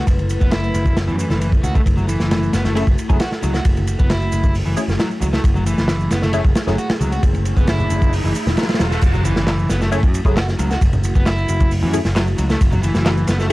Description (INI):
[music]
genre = breakbeat, breaks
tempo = 134 BPM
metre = 4/4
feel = straight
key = F# minor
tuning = A4 = 440 Hz
[part]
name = dark analog pad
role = sustained chords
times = 0.0-13.5 s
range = A3 to B4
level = -27 LUFS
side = equal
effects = chorus, sidechain pumping
[part]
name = overdriven semi-hollow guitar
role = riff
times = 0.0-13.5 s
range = E3 to F#4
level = -24 LUFS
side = equal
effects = tape echo
[part]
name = modern bright picked electric bass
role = bass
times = 0.1-13.5 s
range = E1 to F#2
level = -20 LUFS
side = equal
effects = none
[part]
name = crunchy breakbeat drum kit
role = drums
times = 0.1-13.5 s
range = crash cymbal, hi-hat, kick drum, ride cymbal, snare drum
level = -18 LUFS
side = equal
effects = none
[part]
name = electronic shaker and handclaps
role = drums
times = 0.1-13.5 s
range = none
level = -32 LUFS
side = right 1 dB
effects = none
[part]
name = congas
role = percussion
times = 0.2-12.9 s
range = none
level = -28 LUFS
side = left 1 dB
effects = none
[part]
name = filtered dub chord stab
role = stabs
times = 2.8-6.8, 9.9-13.5 s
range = A3 to G#4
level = -23 LUFS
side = left 2 dB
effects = phaser, analog chorus, cassette tape, tape echo
[part]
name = riser and impact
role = sound effects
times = 6.5-10.8 s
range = none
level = -29 LUFS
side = equal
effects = none
[sound]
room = light reverb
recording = vinyl crackle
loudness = -15 LUFS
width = side -19 dB against mid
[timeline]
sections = 0.0-9.0 A section; 9.0-13.5 B section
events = riser 6.5-9.0; drop 9.0-13.5; impact 9.0-10.8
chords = 0.0 F#m7